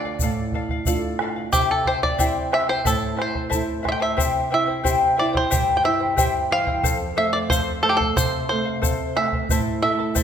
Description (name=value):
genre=andean folk, Andean ensemble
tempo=90 BPM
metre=2/4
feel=straight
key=unclear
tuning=A4 = 440 Hz
part: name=bluegrass banjo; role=melody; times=0.0-10.2 s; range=G4 to G5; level=-23 LUFS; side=right 1 dB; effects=none
part: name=charango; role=accompaniment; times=0.0-10.2 s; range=E4 to A5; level=-24 LUFS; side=left 4 dB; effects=none
part: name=nylon-string guitar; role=accompaniment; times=0.0-10.2 s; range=F2 to G4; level=-27 LUFS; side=right 4 dB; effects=none
part: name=bombo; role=percussion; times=0.2-10.2 s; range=none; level=-26 LUFS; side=right 1 dB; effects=none
part: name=egg shaker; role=percussion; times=0.2-10.2 s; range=none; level=-30 LUFS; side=left 8 dB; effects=none
room=moderate concert hall reverb, RT60 2.0 s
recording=minimal, uncompressed stereo recording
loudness=-19 LUFS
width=side -8 dB against mid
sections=0.0-4.2 A section; 4.2-10.2 B section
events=none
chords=0.0 Dm; 1.5 C; 2.9 Am; 4.2 C; 6.8 F; 9.5 Am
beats=| 0.21 0.87 | 1.53 2.20 | 2.86 3.53 | 4.19 4.85 | 5.52 6.18 | 6.84 7.51 | 8.17 8.83 | 9.49 10.15